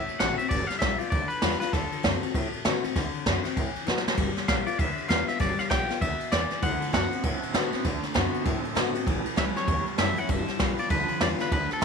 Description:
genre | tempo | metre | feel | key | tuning
rockabilly | 196 BPM | 4/4 | swing 61% on 8ths | D mixolydian | A4 = 438 Hz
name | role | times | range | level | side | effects
twangy electric guitar | melody | 0.0-2.3, 4.5-11.8 s | A4 to G5 | -30 LUFS | left 2 dB | tape echo
picked steel-string acoustic guitar | accompaniment | 0.0-11.8 s | E2 to F#4 | -32 LUFS | left 12 dB | none
upright bass | bass | 0.0-11.8 s | G1 to B2 | -32 LUFS | right 1 dB | none
jazz brush drum kit | drums | 0.1-11.8 s | kick drum, ride cymbal, snare drum | -27 LUFS | right 1 dB | none
electric guitar through a small old amp | riff | 6.6-11.8 s | G2 to C4 | -33 LUFS | right 15 dB | tremolo
room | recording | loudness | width
light reverb, studio ambience | 1960s-style stereo with parts hard left and right | -24 LUFS | side -5 dB against mid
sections
0.0-11.8 A section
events
drum fill 3.9-4.2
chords
0.0 D7; 0.5 G7; 1.7 D7; 4.2 G7; 6.6 D7; 9.1 A7; 10.3 G7

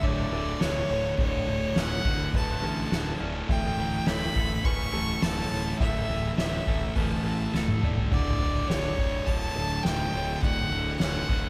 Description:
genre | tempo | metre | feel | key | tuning
post-rock | 104 BPM | 4/4 | straight | D major | A4 = 440 Hz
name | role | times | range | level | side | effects
clear violin | melody | 0.0-11.5 s | C#5 to C#6 | -34 LUFS | equal | analog delay
felt-muted upright piano | arpeggios | 0.0-11.5 s | D4 to F#5 | -44 LUFS | equal | none
twangy electric guitar | arpeggios | 0.0-11.5 s | D2 to A4 | -45 LUFS | equal | none
sludgy distorted guitar | riff | 0.0-11.5 s | D2 to A3 | -36 LUFS | equal | overdrive, slapback echo
thick fuzz guitar | riff | 0.0-11.5 s | D2 to A3 | -37 LUFS | equal | distortion
fuzz fingered electric bass | bass | 0.0-11.5 s | D1 to A1 | -36 LUFS | equal | overdrive
soft-mallet drum kit | drums | 0.0-11.4 s | crash cymbal, kick drum, snare drum, toms | -31 LUFS | equal | none
room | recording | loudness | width
light reverb, small room ambience | none | -27 LUFS | mono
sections
0.0-11.5 A section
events
drum fill 7.5-8.1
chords
0.0 Dmaj7; 3.5 A/D; 8.1 Dmaj7

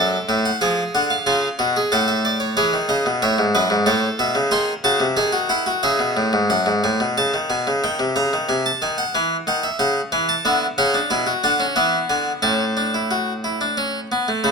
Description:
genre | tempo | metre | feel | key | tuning
classical, baroque-style 3-part fugue for harpsichord | 91 BPM | 3/4 | straight | A major from 10.4 s | A4 = 440 Hz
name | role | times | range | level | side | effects
harpsichord | solo | 0.0-14.5 s | F#2 to B#5 | -17 LUFS | equal | none
room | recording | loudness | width
moderate recital hall reverb, RT60 1.3 s | close, detailed microphones | -17 LUFS | side -5 dB against mid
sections
0.0-6.5 A section; 6.5-14.4 B section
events
none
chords
0.0 D/F#; 0.6 C#; 1.9 F#m/A; 2.6 C#m; 3.9 A; 4.5 G#; 5.8 C#m; 6.5 D#dim/F# (rootless); 7.8 D#7; 8.5 G#/B#; 9.8 C#m; 10.4 Bm; 11.8 E7; 12.4 A

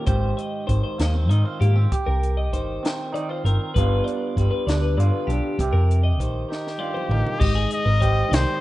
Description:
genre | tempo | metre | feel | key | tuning
math rock and midwest emo | 66 BPM (dotted quarters) | 6/8 | straight | unclear | A4 = 440 Hz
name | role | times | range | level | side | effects
electric guitar through a small old amp | accompaniment | 0.0-8.6 s | G2 to G4 | -28 LUFS | right 3 dB | none
twelve-string electric guitar | arpeggios | 0.0-8.6 s | G4 to Eb5 | -30 LUFS | left 4 dB | digital delay
hollow-body short-scale picked electric bass | bass | 0.1-8.4 s | G1 to Ab2 | -20 LUFS | equal | none
compact cocktail drum kit | drums | 0.1-8.5 s | crash cymbal, hi-hat, kick drum, snare drum, toms | -26 LUFS | equal | none
clear trumpet | melody | 6.5-8.6 s | G4 to Eb5 | -26 LUFS | left 3 dB | none
room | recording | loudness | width
light reverb, small room ambience | rough home demo mix, nothing above 10.5 kHz | -19 LUFS | side -16 dB against mid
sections
0.0-7.4 A section; 7.4-8.6 B section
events
drum fill 6.5-7.4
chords
0.1 Abmaj7; 3.8 G7; 5.6 Cm7; 7.4 Abmaj7

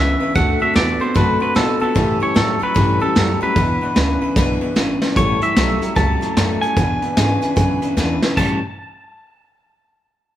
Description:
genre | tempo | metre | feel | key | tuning
rockabilly | 150 BPM | 4/4 | swing 64% on 8ths | A mixolydian | A4 = 440 Hz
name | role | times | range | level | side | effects
twangy electric guitar | melody | 0.0-8.6 s | A4 to A5 | -21 LUFS | equal | spring reverb
picked steel-string acoustic guitar | accompaniment | 0.0-8.6 s | A2 to B4 | -24 LUFS | left 5 dB | none
electric guitar through a small old amp | riff | 0.0-8.6 s | E2 to G4 | -22 LUFS | right 2 dB | none
upright bass | bass | 0.0-8.6 s | G#1 to B2 | -22 LUFS | equal | none
vintage brush drum kit | drums | 0.4-8.5 s | crash cymbal, hi-hat, kick drum, snare drum | -20 LUFS | equal | none
room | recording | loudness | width
light reverb | band playing live in one room | -15 LUFS | side -12 dB against mid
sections
0.0-5.2 A section; 5.2-8.4 B section; 8.4-10.0 C section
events
drum fill 4.4-5.2, 8.0-8.4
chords
0.4 D7; 2.0 A7; 3.6 E7; 5.2 A7; 6.8 E7; 8.4 A7

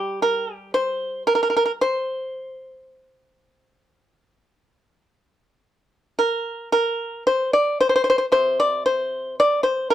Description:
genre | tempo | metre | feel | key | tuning
chinese traditional, Chinese solo plucked strings | 52-58 BPM | 4/4 | rubato | unclear | A4 = 440 Hz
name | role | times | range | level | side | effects
pipa | solo | 0.0-9.9 s | C3 to D5 | -19 LUFS | equal | none
room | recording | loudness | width
light reverb | dark, warm production | -19 LUFS | side -12 dB against mid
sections
0.0-6.2 A section; 6.2-9.9 B section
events
none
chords
none

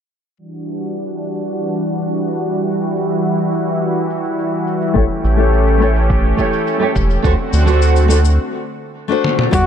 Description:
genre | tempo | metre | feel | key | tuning
sunset chillout | 105 BPM | 4/4 | straight | E minor | A4 = 440 Hz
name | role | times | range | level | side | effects
lush unison pad | sustained chords | 0.4-9.7 s | D3 to G4 | -19 LUFS | equal | chorus
electronic cabasa and toms | drums | 0.4-9.6 s | none | -22 LUFS | left 1 dB | none
nylon-string guitar | accompaniment | 4.9-9.6 s | G3 to D5 | -18 LUFS | moving between left 9 dB and right 4 dB | auto-pan, low-pass filter, ping-pong delay
round analog bass | bass | 5.0-9.6 s | E1 to E2 | -13 LUFS | equal | none
electronic kick drum | drums | 5.0-9.6 s | none | -19 LUFS | equal | overdrive
warm flugelhorn | melody | 9.5-9.7 s | F#4 | -14 LUFS | equal | none
room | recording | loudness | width
light reverb | low-pass filter | -14 LUFS | side -8 dB against mid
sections
0.4-9.5 A section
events
filter sweep 0.4-9.5; break 8.4-9.5; drum fill 9.2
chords
0.4 Em9; 5.0 A7; 7.2 D7

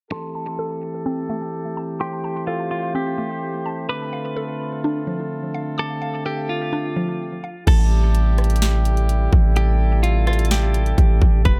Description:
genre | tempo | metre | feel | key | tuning
hip hop, atmospheric cloud-rap | 127 BPM | 4/4 | half-time | A minor | A4 = 443 Hz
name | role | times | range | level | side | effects
clean electric guitar | melody | 0.1-11.6 s | F4 to B4 | -30 LUFS | equal | low-pass filter, analog delay
mellow brass ensemble | sustained chords | 0.1-11.6 s | C3 to C5 | -30 LUFS | equal | sidechain pumping, low-pass filter
mallet-like synth pluck | arpeggios | 0.1-7.7 s | F3 to D6 | -31 LUFS | equal | chorus, phaser, low-pass filter, analog delay
long sustained 808-style bass | bass | 7.7-11.6 s | F1 to A1 | -19 LUFS | equal | none
trap drum kit | drums | 7.7-11.6 s | crash cymbal, hi-hat, kick drum, rim click, snare drum | -22 LUFS | equal | none
room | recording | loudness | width
digital ambience | echo-heavy mix | -21 LUFS | mono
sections
0.1-7.7 A section; 7.7-11.6 B section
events
filter sweep 0.1-7.7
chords
0.1 Am7; 3.9 F6; 7.7 Am7

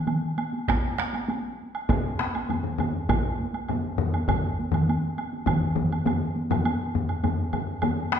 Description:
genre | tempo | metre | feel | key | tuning
japanese traditional, taiko drum ensemble | 101 BPM | 4/4 | straight | none | none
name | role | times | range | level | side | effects
taiko ensemble | percussion | 0.1-8.2 s | none | -30 LUFS | right 1 dB | none
taiko ensemble | percussion | 0.1-6.6 s | none | -28 LUFS | right 1 dB | none
woodblock | percussion | 0.1-8.2 s | none | -33 LUFS | right 3 dB | none
taiko ensemble | percussion | 0.7-5.6 s | none | -28 LUFS | right 1 dB | none
taiko ensemble | percussion | 1.9-8.2 s | none | -27 LUFS | left 3 dB | none
room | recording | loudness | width
wet recital hall reverb, RT60 1.5 s | recorded in a church or concert hall | -24 LUFS | side -8 dB against mid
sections
0.0-6.7 A section; 6.7-8.2 B section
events
speeding up 0.0-8.2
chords
none

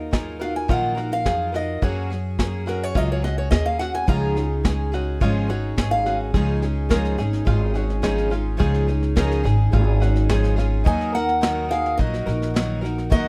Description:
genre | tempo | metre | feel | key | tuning
acoustic folk duo or small band | 106 BPM | 4/4 | straight | unclear | A4 = 439 Hz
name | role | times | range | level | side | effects
picked old ladder-braced acoustic guitar | melody | 0.0-6.2, 10.9-13.3 s | Bb4 to Bb5 | -27 LUFS | equal | none
picked twelve-string acoustic guitar | accompaniment | 0.0-13.3 s | Db3 to Bb4 | -29 LUFS | equal | none
open-back banjo | arpeggios | 0.0-10.9 s | F4 to Bb4 | -33 LUFS | equal | none
upright bass | bass | 0.0-13.3 s | Ab1 to Gb2 | -25 LUFS | equal | none
soft brush drum kit | drums | 0.1-13.3 s | kick drum, snare drum | -25 LUFS | equal | none
mellow accordion | second line | 10.9-13.3 s | Gb4 to Eb5 | -33 LUFS | equal | none
room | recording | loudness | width
little or no reverb | none | -22 LUFS | mono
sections
0.0-6.3 A section; 6.3-10.9 B section; 10.9-13.3 C section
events
steel-string acoustic guitar solo 0.0-6.3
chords
0.0 Ebmadd9; 1.8 Gbadd9; 4.1 Dbadd9; 10.9 Ebm

